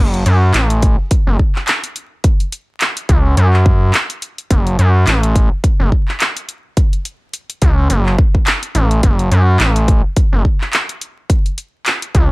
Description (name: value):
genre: glitch hop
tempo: 106 BPM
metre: 4/4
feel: swing 57% on 16ths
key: F# minor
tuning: A4 = 440 Hz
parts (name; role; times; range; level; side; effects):
- gritty driven synth bass; bass; 0.0-12.3 s; F#1 to F#2; -12 LUFS; equal; tube saturation
- dubstep drum kit; drums; 0.1-12.3 s; handclaps, hi-hat; -18 LUFS; equal; none
- electronic kick drum; drums; 0.8-12.3 s; none; -13 LUFS; equal; none
room: little or no reverb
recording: dry, gritty hardware recording, transformer saturation, vinyl crackle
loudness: -12 LUFS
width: side -23 dB against mid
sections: 0.0-12.3 A section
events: none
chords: none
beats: 0.54 1.11 1.68 | 2.24 2.81 3.38 3.94 | 4.51 5.07 5.64 6.21 | 6.77 7.34 7.90 8.47 | 9.04 9.60 10.17 10.73 | 11.30 11.87